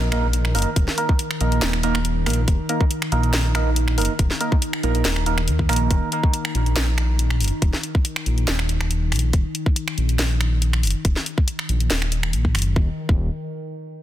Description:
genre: deep dubstep.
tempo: 140 BPM.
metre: 4/4.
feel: swing 53% on 16ths, half-time.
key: unclear.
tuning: A4 = 442 Hz.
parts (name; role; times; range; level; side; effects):
overtone-sweeping drone; sustained chords; 0.0-12.8 s; Eb3; -29 LUFS; left 2 dB; chorus, built-in reverb.
percussive organ stab; stabs; 0.0-6.1 s; Bb3 to Bb4; -26 LUFS; right 4 dB; chorus, phaser, dub echo.
dark detuned saw bass; bass; 0.0-13.3 s; Eb1 to Eb2; -21 LUFS; equal; none.
impact; sound effects; 0.1-0.8 s; none; -40 LUFS; left 1 dB; none.
garage drum kit; drums; 0.1-12.7 s; finger snaps, hi-hat, snare drum; -25 LUFS; equal; soft clipping on snare.
electronic kick drum; drums; 0.8-13.2 s; none; -19 LUFS; equal; none.
room: little or no reverb.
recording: dense, heavily limited modern master.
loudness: -18 LUFS.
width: side -12 dB against mid.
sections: 0.0-12.8 A section; 12.8-14.0 B section.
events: impact 0.0-0.8; filter sweep on detuned saw bass 0.0-12.8.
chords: 0.0 Eb5; 12.8 N.C..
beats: 0.34 | 0.76 1.19 1.62 2.05 | 2.48 2.91 3.33 3.76 | 4.19 4.62 5.05 5.48 | 5.91 6.33 6.76 7.19 | 7.62 8.05 8.48 8.91 | 9.34 9.76 10.19 10.62 | 11.05 11.48 11.91 12.34 | 12.76 13.19.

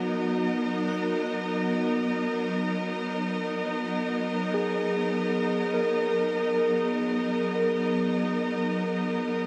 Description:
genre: ambient.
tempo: free time.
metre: none.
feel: none.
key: B major.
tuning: A4 = 435 Hz.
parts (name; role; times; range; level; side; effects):
clear studio string section; sustained chords; 0.0-9.5 s; F#3 to D#5; -29 LUFS; equal; none.
muted felt-like synth keys; arpeggios; 0.0-9.5 s; D#4 to A#4; -33 LUFS; equal; chorus, diffuse ambient delay.
backwards swelling texture; texture; 0.0-4.6 s; F#5 to F#6; -52 LUFS; equal; none.
room: wet huge ambient reverb, RT60 8.2 s.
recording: in a vast, echoing space.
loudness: -27 LUFS.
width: mono.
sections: 0.0-4.5 A section; 4.5-9.5 A section.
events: none.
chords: 0.0 Bmaj7.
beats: free time.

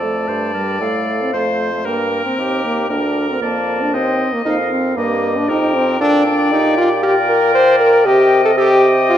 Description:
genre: quick classical-period movement for wind quintet.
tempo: 116 BPM.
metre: 4/4.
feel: rubato.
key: G minor from 6.0 s.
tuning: A4 = 439 Hz.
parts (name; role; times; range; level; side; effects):
silver concert flute; melody; 0.0-9.2 s; Eb5 to A5; -22 LUFS; left 8 dB; none.
bright oboe; second line; 0.0-9.2 s; Bb4 to Eb5; -23 LUFS; left 3 dB; none.
clear French horn; accompaniment; 0.0-9.2 s; G3 to C5; -16 LUFS; equal; none.
clear clarinet; accompaniment; 0.0-9.2 s; G4 to C5; -23 LUFS; right 7 dB; none.
warm bassoon; bass; 0.0-9.2 s; D2 to C3; -21 LUFS; right 2 dB; none.
room: wet recital hall reverb, RT60 1.5 s.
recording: none.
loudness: -13 LUFS.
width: side -10 dB against mid.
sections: 0.0-9.2 A section.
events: none.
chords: 0.0 F; 1.9 Gm; 3.9 Eb; 6.0 Gm/Bb; 8.1 Cm.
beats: 0.29 0.81 1.34 | 1.86 2.38 2.90 3.42 | 3.94 4.46 4.97 5.49 | 6.01 6.53 7.04 7.55 | 8.06 8.58 9.10.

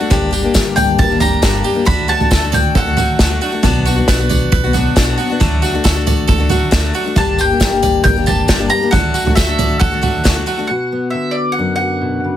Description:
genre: indie folk with a building arrangement.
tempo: 136 BPM.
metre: 4/4.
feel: straight.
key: D major.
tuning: A4 = 442 Hz.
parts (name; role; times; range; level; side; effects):
picked steel-string acoustic guitar; accompaniment; 0.0-10.7 s; G2 to G4; -18 LUFS; left 6 dB; none.
harpsichord; arpeggios; 0.0-10.7 s; D4 to D5; -22 LUFS; right 7 dB; none.
upright bass; bass; 0.1-10.4 s; G1 to D2; -20 LUFS; equal; none.
unplugged drum kit; drums; 0.1-10.4 s; kick drum, snare drum, toms; -15 LUFS; right 1 dB; none.
tambourine; percussion; 0.1-10.5 s; none; -28 LUFS; left 5 dB; none.
mandolin; melody; 0.8-3.4, 7.2-12.4 s; D5 to B5; -18 LUFS; left 1 dB; tape echo.
fingerpicked steel-string acoustic guitar; accompaniment; 10.7-12.4 s; F#2 to F#4; -18 LUFS; left 2 dB; none.
room: light reverb.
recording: heavily compressed radio sound.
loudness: -12 LUFS.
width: side -11 dB against mid.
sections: 0.0-10.7 A section; 10.7-12.4 B section.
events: none.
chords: 0.1 Gm; 1.9 D; 3.6 Bm; 5.4 D; 7.2 Gm; 8.9 D; 10.7 Bm.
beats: | 0.11 0.55 0.99 1.43 | 1.87 2.31 2.75 3.20 | 3.64 4.08 4.52 4.96 | 5.40 5.84 6.28 6.72 | 7.16 7.61 8.05 8.49 | 8.93 9.37 9.81 10.25 | 10.70 11.14 11.58 12.03.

